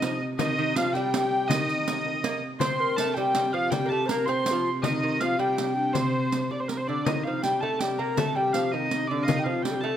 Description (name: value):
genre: medieval dance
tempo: 108 BPM (dotted quarters)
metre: 6/8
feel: straight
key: C dorian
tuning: A4 = 438 Hz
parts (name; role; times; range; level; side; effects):
- dark hurdy-gurdy; melody; 0.0-10.0 s; Bb4 to C6; -27 LUFS; equal; none
- breathy mellow bass recorder; second line; 0.0-10.0 s; C4 to C5; -30 LUFS; left 5 dB; none
- lute; second line; 0.0-10.0 s; C3 to C4; -33 LUFS; right 6 dB; none
- dark viola da gamba; drone; 0.0-10.0 s; C3; -32 LUFS; right 1 dB; none
- riq; percussion; 0.0-9.8 s; none; -34 LUFS; right 6 dB; none
- frame drum; percussion; 0.2-10.0 s; none; -32 LUFS; left 5 dB; none
room: moderate scoring stage reverb, RT60 2.0 s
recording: close, detailed microphones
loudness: -23 LUFS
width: side -10 dB against mid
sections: 0.0-7.1 A section; 7.1-10.0 B section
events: none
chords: none